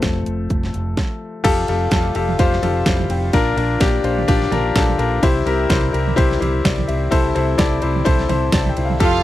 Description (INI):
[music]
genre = piano-driven pop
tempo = 127 BPM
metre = 4/4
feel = swing 56% on 16ths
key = F major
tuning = A4 = 440 Hz
[part]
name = clear grand piano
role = accompaniment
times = 0.0-9.2 s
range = Bb2 to C6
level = -19 LUFS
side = left 4 dB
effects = none
[part]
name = fingered electric bass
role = bass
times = 0.0-9.2 s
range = F1 to C2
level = -22 LUFS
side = right 1 dB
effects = none
[part]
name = pop drum kit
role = drums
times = 0.0-9.1 s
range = crash cymbal, hi-hat, kick drum, ride cymbal, snare drum, toms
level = -19 LUFS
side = right 1 dB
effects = none
[part]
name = hand-pumped harmonium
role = sustained chords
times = 1.5-9.2 s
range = C3 to F4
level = -30 LUFS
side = right 6 dB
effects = none
[part]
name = rich studio violin section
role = second line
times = 9.0-9.2 s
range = F4 to F5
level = -19 LUFS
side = right 7 dB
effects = none
[sound]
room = little or no reverb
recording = dry, close 1970s-style studio recording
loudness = -15 LUFS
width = side -14 dB against mid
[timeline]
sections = 0.0-1.4 A section; 1.4-9.2 B section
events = grand piano solo 0.0-1.4; stop 1.0-1.4; grand piano fill 8.1-9.0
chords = 0.0 F; 1.4 Fadd9; 3.3 Bb; 5.2 C; 7.1 Am/C